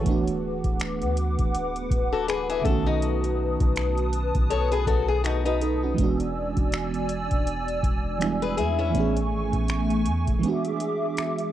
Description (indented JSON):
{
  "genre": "contemporary R&B",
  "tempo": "81 BPM",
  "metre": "4/4",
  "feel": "swing 58% on 16ths",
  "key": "unclear",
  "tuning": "A4 = 441 Hz",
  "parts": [
    { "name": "FM electric piano with soft pad layer", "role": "accompaniment", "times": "0.0-11.5 s", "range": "C#3 to C#5", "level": "-28 LUFS", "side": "right 6 dB", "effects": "chorus, tremolo, cassette tape" },
    { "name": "hollow soft pad", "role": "sustained chords", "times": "0.0-11.5 s", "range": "A3 to E6", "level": "-30 LUFS", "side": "left 2 dB", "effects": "ensemble chorus, cassette tape" },
    { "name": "picked old ladder-braced acoustic guitar", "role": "arpeggios", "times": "0.0-9.1 s", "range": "B3 to C#5", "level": "-28 LUFS", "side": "left 7 dB", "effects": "cassette tape, tape echo" },
    { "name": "soft 808-style bass", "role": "bass", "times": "0.0-10.4 s", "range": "D1 to E2", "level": "-28 LUFS", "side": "equal", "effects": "none" },
    { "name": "booming analog drum machine", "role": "drums", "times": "0.1-11.5 s", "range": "finger snaps, hi-hat, kick drum", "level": "-26 LUFS", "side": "equal", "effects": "cassette tape" }
  ],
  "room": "little or no reverb",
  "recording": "home recording on cassette",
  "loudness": "-22 LUFS",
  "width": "side -12 dB against mid",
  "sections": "0.0-11.5 A section",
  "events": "kick muted 10.4-11.5",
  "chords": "0.1 D6; 2.7 B7; 6.0 E7; 8.9 Amaj7; 10.4 E7",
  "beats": "| 0.06 0.80 1.54 2.28 | 3.02 3.76 4.50 5.25 | 5.99 6.73 7.47 8.21 | 8.95 9.69 10.43 11.17"
}